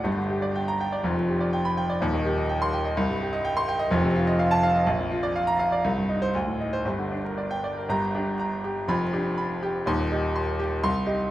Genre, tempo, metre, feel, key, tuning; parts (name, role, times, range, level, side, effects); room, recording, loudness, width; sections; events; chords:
classical, virtuoso piano study; 113-129 BPM; 2/4; rubato; G minor; A4 = 440 Hz
clear grand piano; solo; 0.0-11.3 s; Eb1 to C6; -23 LUFS; equal
light reverb; close, detailed microphones, vinyl crackle; -23 LUFS; side -14 dB against mid
0.0-7.9 A section; 7.9-11.3 B section
0.0 Gm; 1.0 G7/F; 2.0 Cm/Eb; 3.0 Cm; 3.9 F7; 4.9 Bb; 5.8 Cm; 6.3 D5; 6.9 Gm; 8.9 G7/F; 9.9 Cm/Eb